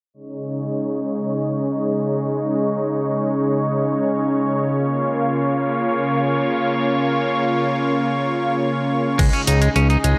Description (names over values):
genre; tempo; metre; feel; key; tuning
synthwave; free time; none; none; unclear; A4 = 440 Hz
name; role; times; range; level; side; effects
lush unison pad; sustained chords; 0.1-10.2 s; Db3 to Db5; -21 LUFS; equal; chorus, sidechain pumping
clean electric guitar; arpeggios; 9.2-10.2 s; Ab3 to Eb4; -24 LUFS; equal; tremolo, delay
fat analog bass; bass; 9.2-10.1 s; Db2; -18 LUFS; equal; sidechain pumping
electronic kick drum; drums; 9.2-9.3 s; none; -20 LUFS; equal; overdrive
pop drum kit; drums; 9.2-10.2 s; crash cymbal, hi-hat; -29 LUFS; equal; overdrive
room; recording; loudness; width
moderate plate reverb, RT60 1.6 s, digital ambience; low-pass filter; -20 LUFS; mono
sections
0.1-9.2 A section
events
filter sweep 0.1-9.2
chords
0.1 Dbsus2; 4.7 Bbm; 9.2 Dbsus2